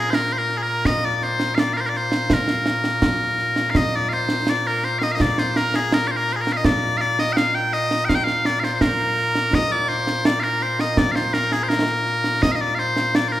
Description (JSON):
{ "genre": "scottish traditional, Scottish pipe music", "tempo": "83 BPM", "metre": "2/4", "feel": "straight", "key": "Bb major", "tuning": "A4 = 439 Hz", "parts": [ { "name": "loud bright bagpipes", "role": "melody", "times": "0.0-13.4 s", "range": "Bb2 to G5", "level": "-20 LUFS", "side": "left 1 dB", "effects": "none" }, { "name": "concert snare drum and concert bass drum", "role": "drums", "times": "0.1-13.3 s", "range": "none", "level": "-22 LUFS", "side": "right 1 dB", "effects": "none" } ], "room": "wet recital hall reverb, RT60 1.7 s", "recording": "recorded in a church or concert hall", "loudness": "-18 LUFS", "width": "side -13 dB against mid", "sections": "0.0-3.7 A section; 3.7-13.4 A section", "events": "none", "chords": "none", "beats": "0.13 | 0.86 1.58 | 2.30 3.02 | 3.75 4.47 | 5.19 5.92 | 6.64 7.36 | 8.09 8.81 | 9.53 10.25 | 10.98 11.70 | 12.42 13.14" }